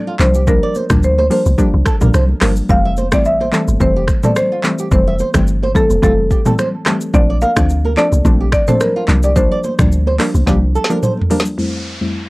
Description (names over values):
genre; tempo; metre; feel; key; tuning
afrobeats; 108 BPM; 4/4; swing 55% on 16ths; F major; A4 = 440 Hz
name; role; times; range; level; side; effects
marimba with medium mallets; melody; 0.0-12.3 s; A4 to F5; -18 LUFS; equal; low-pass filter
soft round pluck; accompaniment; 0.0-12.2 s; F2 to E4; -18 LUFS; left 1 dB; chorus, low-pass filter
flamenco guitar; riff; 0.1-11.4 s; F4 to E5; -23 LUFS; right 4 dB; tape echo
deep log drum bass; bass; 0.2-10.8 s; F1 to D2; -15 LUFS; equal; none
afro-pop drum kit; drums; 0.2-11.6 s; finger snaps, handclaps, hi-hat, kick drum, rim click, shaker, snare drum, toms; -16 LUFS; equal; none
congas; percussion; 0.2-11.5 s; none; -26 LUFS; left 1 dB; none
downlifter; sound effects; 11.6-12.3 s; none; -27 LUFS; equal; none
room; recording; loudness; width
little or no reverb; dry, gritty hardware recording; -12 LUFS; side -22 dB against mid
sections
0.0-11.6 A section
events
drum fill 10.5-11.6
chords
0.2 C7sus4; 2.7 Fmaj7; 7.1 Bbmaj7; 9.1 C7sus4; 11.6 Fmaj7